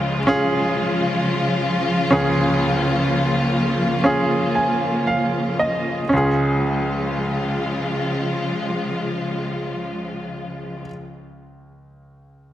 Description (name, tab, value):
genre	pop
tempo	55-67 BPM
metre	4/4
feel	straight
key	Db major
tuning	A4 = 440 Hz
part	bright grand piano	accompaniment	0.0-12.5 s	Db2 to Ab5	-21 LUFS	right 1 dB	none
part	rich studio string section	sustained chords	0.0-10.9 s	Db3 to F4	-22 LUFS	left 1 dB	none
room	moderate concert hall reverb, RT60 2.0 s, small room ambience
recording	heavily compressed radio sound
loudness	-18 LUFS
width	side -12 dB against mid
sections	0.0-6.1 A section; 6.1-10.5 B section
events	slowing down 0.0-6.1; grand piano fill 4.0-6.1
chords	0.0 Db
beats	0.28 1.18 | 2.11 3.07 4.05 5.07 | 6.12 7.21 8.29 9.37